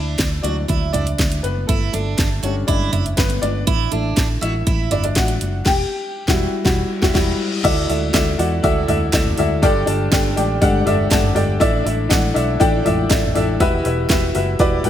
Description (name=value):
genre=piano-driven pop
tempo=121 BPM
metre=4/4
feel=straight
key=D major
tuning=A4 = 441 Hz
part: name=warm upright piano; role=accompaniment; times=0.0-14.9 s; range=G2 to A5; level=-19 LUFS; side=left 2 dB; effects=wide subtle chorus
part: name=picked steel-string acoustic guitar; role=riff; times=0.0-5.0 s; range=D4 to F#4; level=-26 LUFS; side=right 8 dB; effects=wide subtle chorus
part: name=vintage muted fingered electric bass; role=bass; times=0.0-14.9 s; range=E1 to E2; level=-22 LUFS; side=equal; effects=none
part: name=house drum kit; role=drums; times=0.2-14.9 s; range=crash cymbal, hi-hat, kick drum, snare drum, toms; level=-20 LUFS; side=equal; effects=none
part: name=reverse cymbal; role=sound effects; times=6.9-7.6 s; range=none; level=-31 LUFS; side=left 3 dB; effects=none
part: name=group handclap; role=percussion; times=8.1-14.2 s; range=none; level=-31 LUFS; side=right 9 dB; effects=none
room=light reverb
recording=bright 1980s-style digital production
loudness=-16 LUFS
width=side -10 dB against mid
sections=0.0-7.6 A section; 7.6-14.9 B section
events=upright piano solo 0.0-7.6; band accent 5.7-7.6; reverse cymbal 6.9-7.6; upright piano fill 10.6-11.6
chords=0.0 Dadd9; 1.7 Gsus2; 3.7 Asus4; 5.7 Emadd9; 7.6 Dadd9; 9.6 Gsus2; 11.6 Asus4; 13.6 Emadd9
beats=0.19 0.69 1.19 | 1.69 2.18 2.68 3.18 | 3.67 4.17 4.67 5.17 | 5.66 6.16 6.66 7.15 | 7.65 8.14 8.64 9.14 | 9.63 10.13 10.62 11.12 | 11.62 12.11 12.61 13.11 | 13.60 14.10 14.59